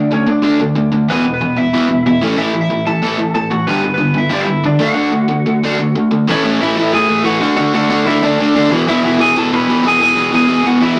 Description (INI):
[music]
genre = punk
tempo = 185 BPM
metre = 4/4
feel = straight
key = E mixolydian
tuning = A4 = 440 Hz
[part]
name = lightly driven lead guitar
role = melody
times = 0.0-11.0 s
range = B3 to B5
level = -19 LUFS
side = equal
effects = digital delay
[part]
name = overdriven electric guitar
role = riff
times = 0.0-11.0 s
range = E2 to D4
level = -16 LUFS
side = equal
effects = none
[sound]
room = light reverb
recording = rough rehearsal-room recording, warm saturation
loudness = -14 LUFS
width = mono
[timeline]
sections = 0.0-6.3 A section; 6.3-11.0 B section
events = none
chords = 0.0 D5; 1.1 E5; 2.2 A5; 3.7 G; 4.8 D; 6.3 A; 7.4 D; 8.7 E